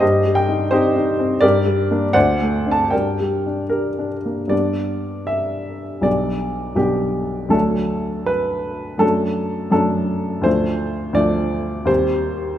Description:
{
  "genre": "classical, romantic character piece for solo piano",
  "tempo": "73-87 BPM",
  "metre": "2/4",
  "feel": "rubato",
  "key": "G minor, G major from 4.5 s",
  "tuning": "A4 = 440 Hz",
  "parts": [
    { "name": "clear upright piano", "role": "solo", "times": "0.0-12.6 s", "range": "B1 to A5", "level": "-17 LUFS", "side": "equal", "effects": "none" }
  ],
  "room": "moderate scoring stage reverb, RT60 1.8 s",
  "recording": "none",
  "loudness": "-17 LUFS",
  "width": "side -11 dB against mid",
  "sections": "0.0-4.5 A section; 4.5-12.6 B section",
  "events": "none",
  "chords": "0.0 Cm/G; 1.4 Gm; 2.1 D7; 2.9 Gm; 4.5 G; 6.1 G/B; 7.5 D; 9.0 D/F#; 10.5 Dm; 11.9 Cm/Eb"
}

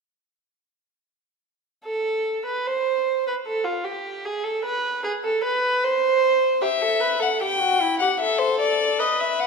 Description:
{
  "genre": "classical, baroque-style fugue for string quartet",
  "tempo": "76 BPM",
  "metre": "3/4",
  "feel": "straight",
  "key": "A minor",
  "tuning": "A4 = 439 Hz",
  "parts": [
    { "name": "dark violin", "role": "second line", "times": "1.8-9.5 s", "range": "E4 to C5", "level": "-22 LUFS", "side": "right 2 dB", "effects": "none" },
    { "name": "warm violin", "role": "melody", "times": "6.6-9.5 s", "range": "C5 to G5", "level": "-21 LUFS", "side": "left 6 dB", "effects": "none" }
  ],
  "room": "moderate scoring stage reverb, RT60 1.9 s",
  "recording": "minimal, uncompressed stereo recording",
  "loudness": "-20 LUFS",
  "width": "side -4 dB against mid",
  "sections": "1.9-9.5 A section",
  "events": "none",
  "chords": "1.9 N.C.; 6.6 Em/G; 8.2 Amadd11"
}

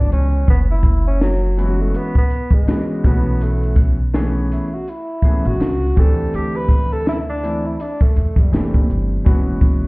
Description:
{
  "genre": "hip hop, jazz-hop",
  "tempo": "82 BPM",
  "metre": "4/4",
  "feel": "swing 58% on 16ths",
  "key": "F# minor",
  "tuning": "A4 = 440 Hz",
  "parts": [
    { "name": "breathy tenor saxophone", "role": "melody", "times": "0.0-8.9 s", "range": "F#3 to B4", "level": "-24 LUFS", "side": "equal", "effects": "none" },
    { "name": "warm concert grand piano", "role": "accompaniment", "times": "0.0-9.9 s", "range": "E3 to C#5", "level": "-24 LUFS", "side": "left 1 dB", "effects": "none" },
    { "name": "upright bass", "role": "bass", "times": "0.0-9.9 s", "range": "F#1 to F#2", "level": "-18 LUFS", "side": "equal", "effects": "none" },
    { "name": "compact cocktail drum kit", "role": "drums", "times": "0.1-9.8 s", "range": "hi-hat, kick drum, snare drum", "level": "-15 LUFS", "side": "equal", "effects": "none" }
  ],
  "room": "little or no reverb",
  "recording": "heard muffled through a wall, stone room reverb, EQ",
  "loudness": "-15 LUFS",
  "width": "side -25 dB against mid",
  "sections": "0.0-9.9 A section",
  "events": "tenor saxophone solo 0.0-9.9",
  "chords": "0.0 F#9sus4; 3.0 B9sus4; 6.0 D9sus4; 9.3 F#9sus4"
}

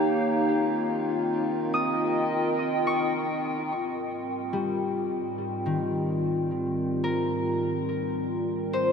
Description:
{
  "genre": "ambient",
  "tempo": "53 BPM",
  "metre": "3/4",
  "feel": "straight",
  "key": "Ab lydian from 3.6 s",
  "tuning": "A4 = 440 Hz",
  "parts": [
    { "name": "warbly tape-like pad", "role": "sustained chords", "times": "0.0-8.9 s", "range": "Ab2 to G5", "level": "-26 LUFS", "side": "equal", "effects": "chorus, built-in reverb" },
    { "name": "concert harp", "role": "arpeggios", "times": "0.0-8.9 s", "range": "Eb3 to Eb6", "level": "-30 LUFS", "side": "left 2 dB", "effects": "tape echo" },
    { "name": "pedal harmonium", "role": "drone", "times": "0.0-3.7 s", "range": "Eb3", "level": "-36 LUFS", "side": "right 1 dB", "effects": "stereo widening" },
    { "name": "glass harmonica", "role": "texture", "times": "3.6-8.9 s", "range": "G5", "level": "-52 LUFS", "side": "right 2 dB", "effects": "none" }
  ],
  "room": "wet huge ambient reverb, RT60 7.8 s",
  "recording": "none",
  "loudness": "-25 LUFS",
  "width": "side -6 dB against mid",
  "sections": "0.0-3.6 A section; 3.6-8.9 B section",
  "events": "filter sweep on ambient pad 3.6-8.9",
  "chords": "0.2 Eb7; 3.6 Abmaj7"
}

